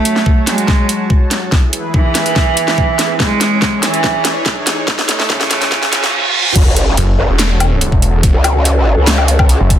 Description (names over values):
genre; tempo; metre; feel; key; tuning
heavy wobble dubstep; 143 BPM; 4/4; half-time; F# minor; A4 = 438 Hz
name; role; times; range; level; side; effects
rich cello; melody; 0.0-6.5 s; C#3 to A3; -16 LUFS; right 2 dB; digital delay
supersaw pad; sustained chords; 0.0-9.8 s; E3 to A5; -23 LUFS; equal; sidechain pumping, low-pass filter
riser, reverse cymbal and sub drop; sound effects; 1.3-8.2 s; none; -21 LUFS; right 1 dB; none
dubstep drum kit; drums; 0.1-9.8 s; crash cymbal, handclaps, hi-hat, snare drum, woodblock; -16 LUFS; equal; high-pass filter on hats, small room ambience, high-pass filter on snare, high-pass filter on toms, high-pass filter on cymbals, high-pass filter on perc
electronic kick drum; drums; 0.3-9.8 s; none; -13 LUFS; equal; small room ambience
growl bass; bass; 6.6-9.6 s; F#1 to C#2; -12 LUFS; equal; chorus, overdrive
snarling distorted saw bass; bass; 7.0-9.8 s; E1 to F#1; -13 LUFS; equal; distortion, overdrive
room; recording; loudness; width
light reverb; dense, heavily limited modern master, high-pass filter; -11 LUFS; side -10 dB against mid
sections
0.0-6.6 A section; 6.6-9.8 B section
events
build-up 0.0-6.6; drum fill 0.0-6.1; filter sweep on supersaw synth 0.0-6.6; filter sweep 0.0-6.6; riser 1.3-6.6; reverse cymbal 5.7-6.6; drop 6.6-9.8; impact 6.6-8.2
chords
0.0 F#m; 1.5 E; 3.2 C#m/E; 4.9 A; 6.6 F#m